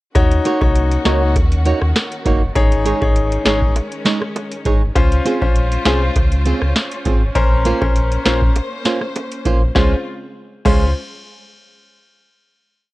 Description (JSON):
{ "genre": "dancehall", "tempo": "100 BPM", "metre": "4/4", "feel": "straight", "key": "Db major", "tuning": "A4 = 441 Hz", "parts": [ { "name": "bright grand piano", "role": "accompaniment", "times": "0.2-10.9 s", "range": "Db4 to Db5", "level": "-20 LUFS", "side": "left 4 dB", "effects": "none" }, { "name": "warm studio string section", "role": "sustained chords", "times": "0.2-10.0 s", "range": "Db3 to C5", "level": "-28 LUFS", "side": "left 1 dB", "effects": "sidechain pumping" }, { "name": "sub bass with octave", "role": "bass", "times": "0.2-10.9 s", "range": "Gb1 to Eb2", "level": "-18 LUFS", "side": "equal", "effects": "none" }, { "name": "booming analog drum machine", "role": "drums", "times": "0.2-10.9 s", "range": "crash cymbal, hi-hat, kick drum, rim click, snare drum", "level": "-17 LUFS", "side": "equal", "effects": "none" }, { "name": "bongos", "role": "percussion", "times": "0.2-10.9 s", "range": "none", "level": "-27 LUFS", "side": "right 4 dB", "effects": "none" }, { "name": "flamenco guitar", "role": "arpeggios", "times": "0.5-10.8 s", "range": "Ab3 to Db5", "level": "-20 LUFS", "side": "right 4 dB", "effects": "none" } ], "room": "studio reverb", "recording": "worn, warbling old tape, cassette tape, warbly pitch drift", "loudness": "-14 LUFS", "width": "side -18 dB against mid", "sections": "0.2-9.8 chorus; 9.8-12.2 final chord", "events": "none", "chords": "0.2 Ebm7; 2.6 Absus4; 5.0 Dbmaj7; 7.4 Bbmadd9; 9.8 Dbmaj7", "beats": "| 0.16 0.76 1.36 1.96 | 2.56 3.16 3.76 4.36 | 4.96 5.56 6.16 6.76 | 7.36 7.96 8.56 9.16 | 9.76 10.36" }